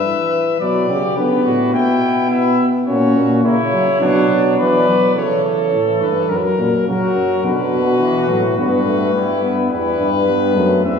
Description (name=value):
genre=classical, imitative canzona for brass ensemble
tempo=106 BPM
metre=4/4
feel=straight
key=E minor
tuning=A4 = 443 Hz
part: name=warm trumpet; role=melody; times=0.0-11.0 s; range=A#4 to G5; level=-20 LUFS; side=left 4 dB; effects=none
part: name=dark trumpet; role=second line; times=0.0-11.0 s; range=B3 to B4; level=-20 LUFS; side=right 1 dB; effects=none
part: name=mellow euphonium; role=bass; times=0.0-11.0 s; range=E2 to E3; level=-19 LUFS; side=left 1 dB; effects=none
part: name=clear trombone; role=accompaniment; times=0.6-11.0 s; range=D3 to C#4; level=-19 LUFS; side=equal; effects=none
room=wet concert hall reverb, RT60 1.9 s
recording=heard from further back in the room, small room ambience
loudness=-14 LUFS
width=side -6 dB against mid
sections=0.0-5.2 A section; 5.2-11.0 B section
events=none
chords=0.0 E5; 0.6 Bm; 1.7 Em/B; 2.9 F#/A#; 4.0 Bm; 5.2 C#dim; 6.3 F#; 7.4 Bm; 8.6 Em/G; 9.7 Em